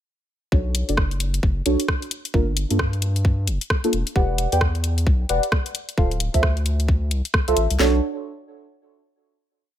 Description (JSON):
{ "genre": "UK garage, two-step garage", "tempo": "132 BPM", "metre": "4/4", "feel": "swing 61% on 16ths", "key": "B minor", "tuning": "A4 = 440 Hz", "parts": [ { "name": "deep mellow chord stab", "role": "stabs", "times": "0.5-8.0 s", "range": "Bb3 to G5", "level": "-24 LUFS", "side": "right 2 dB", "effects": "chorus, phaser, cassette tape, digital delay" }, { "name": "saturated sub bass", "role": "bass", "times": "0.5-8.0 s", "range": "D1 to G2", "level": "-22 LUFS", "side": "equal", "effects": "none" }, { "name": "garage drum kit", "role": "drums", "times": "0.5-7.9 s", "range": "handclaps, kick drum, snare drum", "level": "-20 LUFS", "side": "equal", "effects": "studio reverb" }, { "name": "garage drum kit", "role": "drums", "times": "0.7-7.8 s", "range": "hi-hat, rim click", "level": "-25 LUFS", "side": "left 1 dB", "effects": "studio reverb" } ], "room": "little or no reverb", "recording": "none", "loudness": "-19 LUFS", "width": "side -11 dB against mid", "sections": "0.5-7.8 groove; 7.8-9.6 final chord", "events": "filter sweep on synth stab 0.5-7.8", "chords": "0.5 Bm9; 2.3 Gm9; 3.9 Em9; 5.7 Dm9; 7.8 Bm9" }